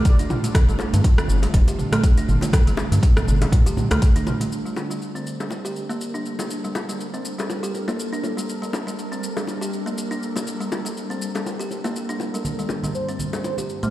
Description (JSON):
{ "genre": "afro house", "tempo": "121 BPM", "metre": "4/4", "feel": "swing 56% on 16ths", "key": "G minor", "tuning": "A4 = 440 Hz", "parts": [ { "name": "ethereal airy pad", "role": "sustained chords", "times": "0.0-13.9 s", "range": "G2 to Bb4", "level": "-31 LUFS", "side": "equal", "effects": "ensemble chorus, built-in reverb, phaser, sidechain pumping" }, { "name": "deep house drum kit", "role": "drums", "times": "0.1-13.9 s", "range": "hi-hat, rim click, shaker, toms", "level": "-31 LUFS", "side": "equal", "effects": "overdrive" }, { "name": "electronic kick drum", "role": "drums", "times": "0.1-4.1 s", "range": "none", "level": "-17 LUFS", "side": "equal", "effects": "overdrive" }, { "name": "congas", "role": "percussion", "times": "0.1-4.5, 12.4-13.9 s", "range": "none", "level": "-28 LUFS", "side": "right 2 dB", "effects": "none" }, { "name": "kalimba", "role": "arpeggios", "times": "0.2-13.9 s", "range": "G3 to G4", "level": "-28 LUFS", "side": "right 1 dB", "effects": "sidechain pumping, low-pass filter, digital delay" }, { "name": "bongos", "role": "percussion", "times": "0.3-13.6 s", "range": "none", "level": "-31 LUFS", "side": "left 2 dB", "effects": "none" }, { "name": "round analog bass", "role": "bass", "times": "0.7-4.0 s", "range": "F1 to G2", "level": "-19 LUFS", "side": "equal", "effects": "sidechain pumping" }, { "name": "expressive synth lead", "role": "melody", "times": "12.9-13.6 s", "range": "C5", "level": "-32 LUFS", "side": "right 2 dB", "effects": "analog chorus, vintage 12-bit sampler grit, digital delay" } ], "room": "light reverb", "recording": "played on a big sound system in a bare room, large studio reverb", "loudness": "-20 LUFS", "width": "side -15 dB against mid", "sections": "0.0-4.5 A section; 4.5-13.9 B section", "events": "filter sweep on kalimba 4.5-13.9", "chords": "0.0 Dm; 4.5 Gm; 12.4 Dm/G" }